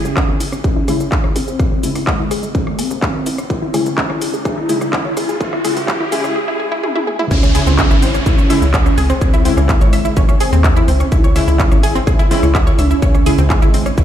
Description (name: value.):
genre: melodic techno.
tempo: 126 BPM.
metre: 4/4.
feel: straight.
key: unclear.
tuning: A4 = 445 Hz.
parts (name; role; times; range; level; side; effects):
fat analog lead; melody; 0.0-14.0 s; G#3 to E4; -22 LUFS; right 1 dB; analog chorus, sidechain pumping, ping-pong delay.
wide unison pluck; arpeggios; 0.0-14.0 s; G#3 to E6; -22 LUFS; right 1 dB; sidechain pumping, ping-pong delay.
synth brass stab; stabs; 0.0-14.0 s; C#3 to E4; -23 LUFS; left 3 dB; chorus, sidechain pumping, ping-pong delay.
tight sequencer bass; bass; 0.0-14.0 s; G#1 to D#2; -17 LUFS; equal; sidechain pumping, high-pass filter.
techno drum kit; drums; 0.0-14.0 s; crash cymbal, handclaps, hi-hat, rim click, shaker, toms; -24 LUFS; equal; none.
riser and downlifter; sound effects; 0.0-11.1 s; none; -25 LUFS; equal; none.
electronic kick drum; drums; 0.2-14.0 s; none; -16 LUFS; equal; distortion.
room: light reverb, digital ambience.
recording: played on a big sound system in a bare room, stone room reverb, high-pass filter.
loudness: -12 LUFS.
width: side -10 dB against mid.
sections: 0.0-7.3 A section; 7.3-14.0 B section.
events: build-up 0.0-7.3; riser 0.0-6.4; filter sweep on synth arpeggio sound 0.0-7.3; filter sweep on analog synth lead 0.0-7.3; filter sweep on synth stab 0.0-7.3; filter sweep 0.0-7.3; drum fill 6.8-7.3; drop 7.3-14.0.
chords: 0.0 C#m.